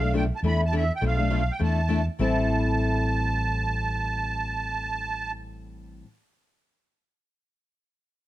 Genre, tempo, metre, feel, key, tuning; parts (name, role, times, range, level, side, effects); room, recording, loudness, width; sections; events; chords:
acoustic string swing (jazz manouche); 204 BPM; 4/4; swing 59% on 8ths; A minor; A4 = 436 Hz
musette accordion; melody; 0.0-5.3 s; E5 to B5; -29 LUFS; right 3 dB; plate reverb
picked steel-string acoustic guitar; accompaniment; 0.0-6.1 s; A2 to A4; -29 LUFS; left 4 dB
mellow fretless electric bass; bass; 0.0-6.0 s; A1 to E2; -27 LUFS; right 1 dB
light reverb; dark, warm production; -23 LUFS; side -14 dB against mid
0.0-2.2 A section; 2.2-4.5 B section
0.4 E7sus4; 1.0 Bm7b5; 1.6 E7sus4; 2.2 Am7